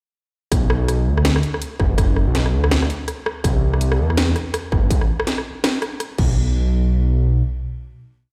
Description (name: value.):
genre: half-time drum and bass.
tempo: 164 BPM.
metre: 4/4.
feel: swing 60% on 16ths, half-time.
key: B phrygian.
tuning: A4 = 440 Hz.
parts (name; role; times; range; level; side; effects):
dark detuned saw bass; bass; 0.5-7.4 s; F#1 to E2; -20 LUFS; equal; none.
drum and bass drum kit; drums; 0.5-6.3 s; crash cymbal, hi-hat, rim click, snare drum; -25 LUFS; equal; overdrive.
electronic kick drum; drums; 0.5-6.3 s; none; -21 LUFS; equal; distortion.
room: light reverb, digital ambience.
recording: played on a big sound system in a bare room, large studio reverb.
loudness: -19 LUFS.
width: mono.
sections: 0.5-6.4 drop; 6.4-8.3 final hit.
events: drop 0.5-6.4.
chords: none.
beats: | 0.52 0.88 1.25 1.61 | 1.98 2.34 2.71 3.08 | 3.44 3.81 4.17 4.54 | 4.91 5.27 5.64 6.00 | 6.37 6.73 7.10.